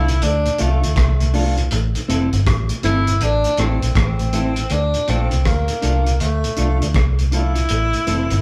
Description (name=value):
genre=roots reggae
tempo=80 BPM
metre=4/4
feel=swing 64% on 16ths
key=D minor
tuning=A4 = 440 Hz
part: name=warm tenor saxophone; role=melody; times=0.0-8.4 s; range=A3 to E4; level=-25 LUFS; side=equal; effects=slapback echo
part: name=mellow electric guitar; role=accompaniment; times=0.0-8.3 s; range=C4 to A4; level=-28 LUFS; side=equal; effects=slapback echo
part: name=vintage muted fingered electric bass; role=bass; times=0.0-8.4 s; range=F1 to D2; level=-21 LUFS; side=equal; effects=none
part: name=mellow tonewheel organ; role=accompaniment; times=0.1-8.4 s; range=D2 to D4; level=-30 LUFS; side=equal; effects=slow rotary speaker, slapback echo
part: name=cloth-damped thuddy drum kit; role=drums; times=0.1-8.4 s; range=hi-hat, kick drum, rim click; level=-25 LUFS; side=equal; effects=none
room=moderate studio reverb, RT60 0.7 s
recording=band playing live in one room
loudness=-18 LUFS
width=mono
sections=0.0-4.7 A section; 4.7-8.4 B section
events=none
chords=0.0 Dm; 1.7 Am; 4.7 Dm; 7.7 Am